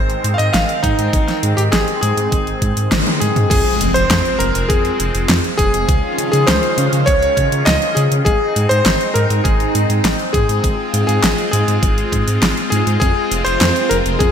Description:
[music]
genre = synthwave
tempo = 101 BPM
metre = 4/4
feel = straight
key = Ab major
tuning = A4 = 440 Hz
[part]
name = bright electric grand piano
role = melody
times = 0.0-14.3 s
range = Eb4 to F5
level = -19 LUFS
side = left 1 dB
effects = ping-pong delay
[part]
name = phased analog pad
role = sustained chords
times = 0.0-14.3 s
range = Eb3 to F4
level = -22 LUFS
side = equal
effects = phaser, chorus, sidechain pumping
[part]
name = dark detuned saw bass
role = bass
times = 0.0-14.3 s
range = F1 to Db3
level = -19 LUFS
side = equal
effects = tube saturation
[part]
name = pop drum kit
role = drums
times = 0.1-14.3 s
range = crash cymbal, handclaps, hi-hat, snare drum, toms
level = -19 LUFS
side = equal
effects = overdrive
[part]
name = electronic kick drum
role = drums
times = 0.8-14.3 s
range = none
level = -17 LUFS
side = equal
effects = overdrive
[part]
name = soft synth bell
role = second line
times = 3.5-14.3 s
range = Ab4 to Eb5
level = -25 LUFS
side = left 2 dB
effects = none
[part]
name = impact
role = sound effects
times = 3.5-5.9 s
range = none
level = -25 LUFS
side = equal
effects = none
[sound]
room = moderate lush hall reverb, RT60 1.7 s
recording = bright 1980s-style digital production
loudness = -13 LUFS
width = side -8 dB against mid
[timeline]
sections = 0.0-3.5 A section; 3.5-14.3 B section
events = drum fill 2.9-3.5; band accent 2.9; impact 3.5-5.9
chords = 0.0 Ab; 3.5 Fm; 5.9 Dbadd9; 8.3 Ab; 13.0 Fm

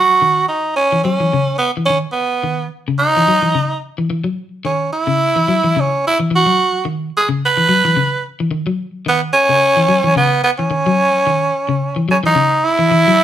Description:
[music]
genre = afrobeat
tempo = 109 BPM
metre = 4/4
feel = swing 55% on 16ths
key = C# minor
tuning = A4 = 440 Hz
[part]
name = raspy tenor saxophone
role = melody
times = 0.0-13.2 s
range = B3 to B4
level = -13 LUFS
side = right 2 dB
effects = none
[part]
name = electric guitar at the edge of break-up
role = arpeggios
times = 0.0-13.2 s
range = C#3 to F#3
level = -18 LUFS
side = left 3 dB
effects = none
[sound]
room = moderate studio reverb, RT60 0.7 s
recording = band playing live in one room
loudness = -13 LUFS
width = side -11 dB against mid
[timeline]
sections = 0.0-12.9 A section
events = none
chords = 0.0 C#madd9

